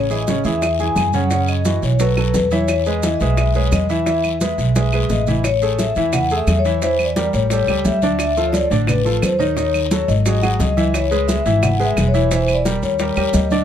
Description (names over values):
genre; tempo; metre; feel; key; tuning
Afro-Cuban jazz; 174 BPM; 4/4; straight; E major; A4 = 440 Hz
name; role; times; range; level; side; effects
vibraphone with medium mallets; melody; 0.0-13.6 s; B4 to G#5; -20 LUFS; left 4 dB; none
clear concert grand piano; accompaniment; 0.0-13.6 s; C#3 to E5; -22 LUFS; right 4 dB; none
upright bass; bass; 0.0-13.6 s; E1 to F#2; -20 LUFS; right 1 dB; none
congas; percussion; 0.1-13.6 s; none; -24 LUFS; equal; none
maracas; percussion; 0.1-13.6 s; none; -32 LUFS; right 8 dB; none
bongos; percussion; 0.3-13.5 s; none; -28 LUFS; left 5 dB; none
guiro; percussion; 0.3-13.6 s; none; -33 LUFS; left 6 dB; none
claves; percussion; 0.6-13.3 s; none; -28 LUFS; right 4 dB; none
room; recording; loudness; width
little or no reverb; close, detailed microphones; -15 LUFS; side -9 dB against mid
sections
0.0-5.4 A section; 5.4-13.6 B section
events
drum fill 4.8-5.4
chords
0.0 Amaj7; 1.3 F#5; 2.0 B5; 2.7 Emaj7; 5.4 Amaj7; 6.8 Edim; 7.5 A7; 8.2 Dm; 9.6 D#m7b5; 10.3 G#5; 10.9 C#m7; 12.3 Edim; 13.0 D#